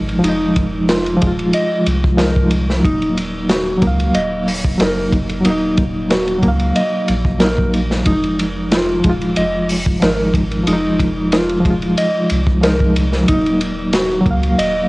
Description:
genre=trip hop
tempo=92 BPM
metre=4/4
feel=straight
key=unclear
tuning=A4 = 442 Hz
part: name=bright reed electric piano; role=accompaniment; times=0.0-14.9 s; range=F3 to F5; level=-17 LUFS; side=equal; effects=fast tremolo, low-pass filter, cassette tape, tape echo
part: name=soft dub sub bass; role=bass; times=0.0-14.9 s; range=Eb1 to Db2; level=-22 LUFS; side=equal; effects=none
part: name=crunchy breakbeat drum kit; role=drums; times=0.1-14.8 s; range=hi-hat, kick drum, ride cymbal, snare drum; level=-20 LUFS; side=equal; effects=cassette tape
part: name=mellow electric guitar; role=arpeggios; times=0.2-14.9 s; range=Eb4 to Eb5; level=-20 LUFS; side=equal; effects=cassette tape, tape echo
room=light reverb, small room ambience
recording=home recording on cassette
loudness=-13 LUFS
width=side -22 dB against mid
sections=0.0-14.9 A section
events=none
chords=0.0 Fm7; 2.9 Ebm; 8.1 Fm7; 13.3 Ebm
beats=| 0.24 0.89 1.54 2.20 | 2.85 3.50 4.15 4.81 | 5.46 6.11 6.76 7.42 | 8.07 8.72 9.37 10.02 | 10.68 11.33 11.98 12.63 | 13.29 13.94 14.59

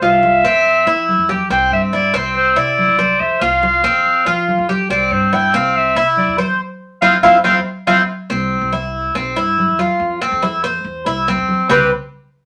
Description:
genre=latin, Cuban son and guajira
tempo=141 BPM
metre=4/4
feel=straight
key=C major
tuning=A4 = 438 Hz
part: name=warm clarinet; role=melody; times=0.0-8.0 s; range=C5 to G5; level=-18 LUFS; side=equal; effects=none
part: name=Cuban tres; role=arpeggios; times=0.0-11.9 s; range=C4 to C5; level=-17 LUFS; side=equal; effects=none
part: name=upright bass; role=bass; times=0.0-11.9 s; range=B1 to F3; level=-28 LUFS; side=equal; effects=none
part: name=congas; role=percussion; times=0.0-11.8 s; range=none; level=-26 LUFS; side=equal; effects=none
room=moderate studio reverb, RT60 0.5 s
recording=none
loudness=-15 LUFS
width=mono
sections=0.0-8.3 A section; 8.3-11.7 B section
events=band accent 6.6-8.3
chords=0.0 F5; 1.5 C; 3.2 F5; 4.9 C; 6.6 F5; 8.3 C; 10.0 F5; 11.7 C5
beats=0.24 0.66 1.08 | 1.51 1.93 2.36 2.78 | 3.21 3.63 4.06 4.48 | 4.91 5.33 5.75 6.18 | 6.60 7.03 7.45 7.88 | 8.30 8.73 9.15 9.57 | 10.00 10.43 10.85 11.27 | 11.70

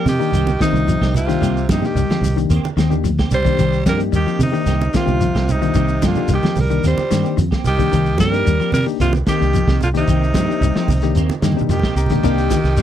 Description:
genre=afrobeat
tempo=111 BPM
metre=4/4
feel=straight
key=C minor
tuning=A4 = 441 Hz
part: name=bright alto saxophone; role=melody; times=0.0-12.8 s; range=Eb4 to C5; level=-22 LUFS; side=right 1 dB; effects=none
part: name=breathy tenor saxophone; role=second line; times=0.0-12.8 s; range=C3 to G3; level=-28 LUFS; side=right 8 dB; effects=none
part: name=clean electric guitar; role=arpeggios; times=0.0-12.8 s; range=Eb3 to G3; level=-23 LUFS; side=left 9 dB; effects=none
part: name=clean electric guitar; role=stabs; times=0.0-12.8 s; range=Eb3 to G4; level=-26 LUFS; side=right 9 dB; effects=ensemble chorus
part: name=fingered electric bass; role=bass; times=0.1-12.8 s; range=C2 to C3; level=-19 LUFS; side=right 1 dB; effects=none
part: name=crunchy breakbeat drum kit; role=drums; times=0.1-12.8 s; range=crash cymbal, hi-hat, kick drum, ride cymbal, snare drum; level=-22 LUFS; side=right 1 dB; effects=none
part: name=congas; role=percussion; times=0.1-12.7 s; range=none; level=-25 LUFS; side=right 5 dB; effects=none
part: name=shekere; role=percussion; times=0.1-12.8 s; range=none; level=-24 LUFS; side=left 1 dB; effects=none
part: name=barky reed electric piano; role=accompaniment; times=0.2-12.6 s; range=Bb3 to Bb5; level=-23 LUFS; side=left 16 dB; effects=overdrive
room=light reverb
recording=dry, close 1970s-style studio recording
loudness=-14 LUFS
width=side -10 dB against mid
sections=0.0-12.2 A section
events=reed electric piano fill 11.2-12.2; drum fill 11.4-12.2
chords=0.0 Cm7; 12.2 Cm9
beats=0.33 0.87 | 1.41 1.96 2.50 3.04 | 3.58 4.12 4.67 5.21 | 5.75 6.29 6.83 7.37 | 7.92 8.46 9.00 9.54 | 10.08 10.62 11.16 11.70 | 12.24 12.78

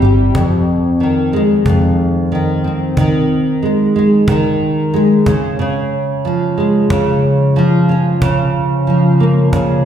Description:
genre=acoustic pop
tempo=92 BPM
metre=4/4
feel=swing 55% on 16ths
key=F minor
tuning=A4 = 439 Hz
part: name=nylon-string guitar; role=accompaniment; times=0.0-9.8 s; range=F2 to G4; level=-12 LUFS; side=equal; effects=double-tracked left and right
part: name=cajon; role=drums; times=0.3-9.7 s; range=none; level=-17 LUFS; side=equal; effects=slapback echo
room=light reverb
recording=live gig heard through the venue's PA, recital hall reverb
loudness=-11 LUFS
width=side -9 dB against mid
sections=0.3-9.8 A section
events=none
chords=0.3 Fm7; 3.0 Ab5/Eb; 5.3 Db; 8.2 Bbm/Db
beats=| 0.34 1.00 1.66 2.31 | 2.97 3.63 4.28 4.94 | 5.59 6.25 6.91 7.56 | 8.22 8.87 9.53

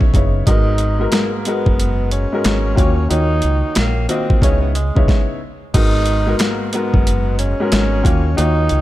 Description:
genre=hip hop, boom-bap hip-hop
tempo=91 BPM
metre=4/4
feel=swing 62% on 16ths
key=G# minor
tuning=A4 = 440 Hz
part: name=warm upright piano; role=accompaniment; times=0.0-8.8 s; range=G#2 to D#5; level=-21 LUFS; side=left 2 dB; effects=cassette tape, high-pass filter, low-pass filter
part: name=deep dub fingered electric bass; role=bass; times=0.0-8.8 s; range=F#1 to D#2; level=-18 LUFS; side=equal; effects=none
part: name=boom bap sampler-style drum kit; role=drums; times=0.0-8.8 s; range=crash cymbal, hi-hat, kick drum, snare drum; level=-16 LUFS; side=equal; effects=overdrive
part: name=breathy tenor saxophone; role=melody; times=0.5-8.8 s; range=G#3 to D#4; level=-22 LUFS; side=right 1 dB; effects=high-pass filter, low-pass filter, ping-pong delay
room=little or no reverb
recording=none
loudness=-14 LUFS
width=side -15 dB against mid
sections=0.0-5.7 A section; 5.7-8.8 B section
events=stop 5.1-5.7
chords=0.5 G#m9; 2.8 D#m9; 4.4 C#m9; 5.7 G#m9; 8.1 D#m9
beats=| 0.47 1.13 1.79 2.44 | 3.10 3.76 4.42 5.08 | 5.74 6.40 7.06 7.72 | 8.38

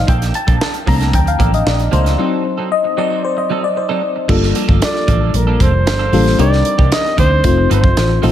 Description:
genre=polished 1980s jazz-funk pop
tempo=114 BPM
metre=4/4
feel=straight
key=G minor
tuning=A4 = 442 Hz
part: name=FM electric piano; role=accompaniment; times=0.0-8.3 s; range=F#3 to Bb5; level=-17 LUFS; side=left 4 dB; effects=lush chorus
part: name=vintage muted fingered electric bass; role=bass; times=0.0-8.3 s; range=F1 to D2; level=-15 LUFS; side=equal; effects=none
part: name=clean electric guitar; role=riff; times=0.1-8.3 s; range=Eb3 to C5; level=-24 LUFS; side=right 8 dB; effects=lush chorus
part: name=tight funk drum kit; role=drums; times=0.1-8.3 s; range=crash cymbal, hi-hat, kick drum, snare drum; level=-17 LUFS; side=equal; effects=none
part: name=congas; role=percussion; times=0.1-8.3 s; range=none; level=-28 LUFS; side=right 2 dB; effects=none
part: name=mellow flugelhorn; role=melody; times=4.8-8.2 s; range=Bb4 to Eb5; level=-18 LUFS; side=right 1 dB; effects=analog delay
room=light reverb, small room ambience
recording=none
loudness=-12 LUFS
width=side -11 dB against mid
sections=0.0-4.3 A section; 4.3-8.3 B section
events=FM electric piano solo 0.0-4.3; break 2.2-4.3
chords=0.1 Bbmaj7; 2.2 F#dim7; 4.3 Gm9; 6.4 Cm9; 7.4 F7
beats=| 0.08 0.61 1.14 1.66 | 2.19 2.71 3.24 3.77 | 4.29 4.82 5.34 5.87 | 6.39 6.92 7.44 7.97

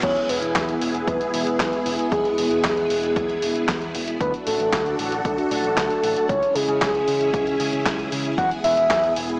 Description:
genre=italo disco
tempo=115 BPM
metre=4/4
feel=straight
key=E major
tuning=A4 = 441 Hz
part: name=soft octave-layered synth lead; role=melody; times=0.0-9.1 s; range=G#4 to F#5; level=-25 LUFS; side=equal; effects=chorus, tremolo
part: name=string machine, full ensemble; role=sustained chords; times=0.0-9.4 s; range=B3 to A4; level=-28 LUFS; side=equal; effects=ensemble chorus
part: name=overdriven picked electric bass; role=bass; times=0.0-9.4 s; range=E1 to C#3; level=-35 LUFS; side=equal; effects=none
part: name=dusty soul sampler-style drum kit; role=drums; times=0.0-9.4 s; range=crash cymbal, handclaps, hi-hat, snare drum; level=-30 LUFS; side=equal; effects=none
part: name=electronic kick drum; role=drums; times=0.0-9.0 s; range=none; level=-32 LUFS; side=equal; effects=none
room=light reverb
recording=dry, gritty hardware recording, small speaker sound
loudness=-22 LUFS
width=mono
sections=0.0-9.4 A section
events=none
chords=0.0 E; 4.2 D; 6.3 C#m; 8.4 E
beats=| 0.03 0.55 1.08 1.60 | 2.12 2.64 3.16 3.69 | 4.21 4.73 5.25 5.77 | 6.29 6.82 7.34 7.86 | 8.38 8.90

